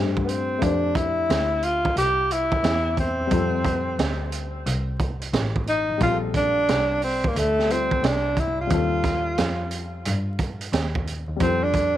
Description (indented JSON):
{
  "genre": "hip hop, jazz-hop",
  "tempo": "89 BPM",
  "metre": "4/4",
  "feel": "swing 66% on 16ths",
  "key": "F major",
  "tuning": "A4 = 437 Hz",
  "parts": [
    { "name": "dark upright piano", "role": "accompaniment", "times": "0.0-12.0 s", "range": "G3 to C5", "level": "-30 LUFS", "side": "left 9 dB", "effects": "none" },
    { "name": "bright double bass", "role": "bass", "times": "0.0-12.0 s", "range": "A1 to G2", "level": "-27 LUFS", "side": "equal", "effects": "none" },
    { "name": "breathy tenor saxophone", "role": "melody", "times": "0.2-12.0 s", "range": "A3 to G4", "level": "-23 LUFS", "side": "equal", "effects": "tape echo" },
    { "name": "crunchy breakbeat drum kit", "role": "drums", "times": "0.2-11.9 s", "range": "hi-hat, kick drum, snare drum", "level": "-26 LUFS", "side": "right 2 dB", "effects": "none" }
  ],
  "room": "light reverb",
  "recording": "1960s-style stereo, vinyl crackle",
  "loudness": "-21 LUFS",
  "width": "side -12 dB against mid",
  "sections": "0.6-11.4 A section",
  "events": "none",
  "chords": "0.0 F69; 6.0 Bbmaj9; 8.7 Ebadd9; 11.4 F69"
}